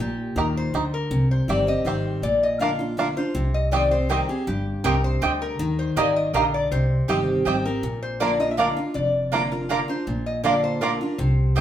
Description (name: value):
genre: bluegrass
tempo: 161 BPM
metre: 3/4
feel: straight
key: unclear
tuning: A4 = 440 Hz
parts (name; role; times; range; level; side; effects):
- lap resonator guitar; melody; 0.0-11.6 s; G4 to F5; -26 LUFS; left 3 dB; none
- picked steel-string acoustic guitar; accompaniment; 0.0-11.6 s; F2 to G4; -26 LUFS; equal; none
- upright bass; bass; 0.0-11.6 s; F1 to Eb2; -26 LUFS; equal; none
- bluegrass banjo; melody; 0.4-11.6 s; C4 to Bb4; -28 LUFS; right 3 dB; none
- mandolin; stabs; 3.7-11.6 s; Bb3 to Bb5; -25 LUFS; right 5 dB; none
room: wet large studio reverb, RT60 0.8 s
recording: band playing live in one room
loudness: -20 LUFS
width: side -10 dB against mid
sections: 0.0-11.6 A section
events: none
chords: 0.0 Eb; 1.1 Cm; 2.2 Bb; 3.4 Cm; 5.6 Eb; 6.7 Cm; 7.8 Bb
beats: 0.37 0.74 | 1.11 1.49 1.86 | 2.23 2.60 2.98 | 3.35 3.73 4.10 | 4.47 4.84 5.22 | 5.59 5.96 6.34 | 6.71 7.08 7.46 | 7.83 8.20 8.58 | 8.95 9.32 9.70 | 10.07 10.44 10.81 | 11.19 11.56